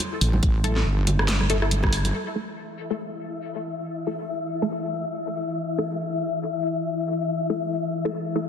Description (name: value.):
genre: deep dubstep.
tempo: 140 BPM.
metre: 4/4.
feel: swing 58% on 16ths, half-time.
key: unclear.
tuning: A4 = 440 Hz.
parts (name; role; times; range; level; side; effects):
garage drum kit; drums; 0.0-2.1 s; hi-hat, rim click, snare drum; -27 LUFS; equal; low-pass filter on snare, low-pass filter on hats, low-pass filter on room.
wobble bass; bass; 0.2-2.1 s; G1 to A1; -22 LUFS; equal; chorus, tube saturation.
congas and bongos; percussion; 0.3-2.1 s; none; -31 LUFS; right 2 dB; dub echo.
electronic kick drum; drums; 0.4-1.9 s; none; -22 LUFS; equal; none.
filtered dub chord stab; stabs; 0.6-8.4 s; A3 to A4; -30 LUFS; left 1 dB; phaser, dub echo.
wind-like tuned noise texture; texture; 2.7-8.5 s; E3 to E4; -27 LUFS; left 4 dB; built-in reverb.
room: moderate lush hall reverb, RT60 2.0 s.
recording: dense, heavily limited modern master.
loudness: -23 LUFS.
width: side -8 dB against mid.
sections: 0.0-2.1 A section; 2.1-8.5 B section.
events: drop 0.0-2.1; band accent 1.8; filter sweep on synth stab 2.1-8.5.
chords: 0.0 A5.